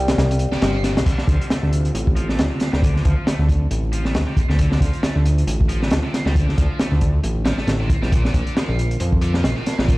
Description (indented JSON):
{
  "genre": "breakbeat, breaks",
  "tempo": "136 BPM",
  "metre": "4/4",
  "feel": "swing 57% on 16ths",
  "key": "D minor",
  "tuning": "A4 = 439 Hz",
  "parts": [
    { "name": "warbly tape-like pad", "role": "sustained chords", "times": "0.0-10.0 s", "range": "C3 to F5", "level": "-30 LUFS", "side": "equal", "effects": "chorus, built-in reverb, vintage 12-bit sampler grit, sidechain pumping" },
    { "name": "fat analog bass", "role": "bass", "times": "0.0-10.0 s", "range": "G1 to F2", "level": "-20 LUFS", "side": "equal", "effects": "tube saturation" },
    { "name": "crunchy breakbeat drum kit", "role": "drums", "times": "0.1-10.0 s", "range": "crash cymbal, hi-hat, kick drum, snare drum", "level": "-19 LUFS", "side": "equal", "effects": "none" },
    { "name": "heavy high-gain guitar", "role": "riff", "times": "0.5-10.0 s", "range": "A2 to A3", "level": "-31 LUFS", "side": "equal", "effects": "distortion, tube saturation, low-pass filter" }
  ],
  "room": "studio reverb",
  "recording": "played on a big sound system in a bare room, large studio reverb, vinyl crackle",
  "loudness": "-17 LUFS",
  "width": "side -20 dB against mid",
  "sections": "0.0-1.1 A section; 1.1-10.0 B section",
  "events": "drop 0.0-1.1",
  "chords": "0.0 Csus4; 1.1 Dm7; 8.1 Bbsus2",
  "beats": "0.18 0.62 | 1.06 1.50 1.94 2.38 | 2.82 3.27 3.71 4.15 | 4.59 5.03 5.47 5.91 | 6.35 6.79 7.24 7.68 | 8.12 8.56 9.00 9.44 | 9.88"
}